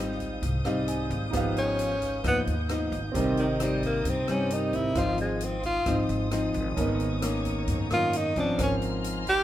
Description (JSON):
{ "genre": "bossa nova", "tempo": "132 BPM", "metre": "4/4", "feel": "straight", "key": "Ab major", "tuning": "A4 = 440 Hz", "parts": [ { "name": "nylon-string guitar", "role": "accompaniment", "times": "0.0-9.4 s", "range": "Ab2 to Eb4", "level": "-29 LUFS", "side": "left 2 dB", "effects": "none" }, { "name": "warm grand piano", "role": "accompaniment", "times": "0.0-9.4 s", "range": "B3 to Ab5", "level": "-35 LUFS", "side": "right 5 dB", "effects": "none" }, { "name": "dark studio string section", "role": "sustained chords", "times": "0.0-9.4 s", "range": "B4 to G6", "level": "-38 LUFS", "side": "left 1 dB", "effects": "none" }, { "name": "upright bass", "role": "bass", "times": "0.0-9.4 s", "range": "Ab1 to G2", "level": "-33 LUFS", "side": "equal", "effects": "none" }, { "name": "open jazz drum kit", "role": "drums", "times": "0.2-9.4 s", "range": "hi-hat, kick drum, rim click", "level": "-36 LUFS", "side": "equal", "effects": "none" }, { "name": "breathy tenor saxophone", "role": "melody", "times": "1.6-9.4 s", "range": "Eb3 to G4", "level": "-27 LUFS", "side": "equal", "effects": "none" } ], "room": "light reverb", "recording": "minimal, uncompressed stereo recording", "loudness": "-25 LUFS", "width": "side -12 dB against mid", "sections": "0.0-9.4 A section", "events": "tenor saxophone solo 0.0-9.4; grand piano fill 0.4-1.3", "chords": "0.0 Fm9/Ab; 1.3 Gaug7/Ab; 3.1 Cm7/Ab; 5.0 Ab6; 6.8 Bmaj9/Ab; 8.6 Bbm9/Ab", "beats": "0.43 0.88 | 1.34 1.79 2.24 2.70 | 3.15 3.60 4.05 4.51 | 4.96 5.41 5.87 6.32 | 6.77 7.23 7.68 8.13 | 8.59 9.04" }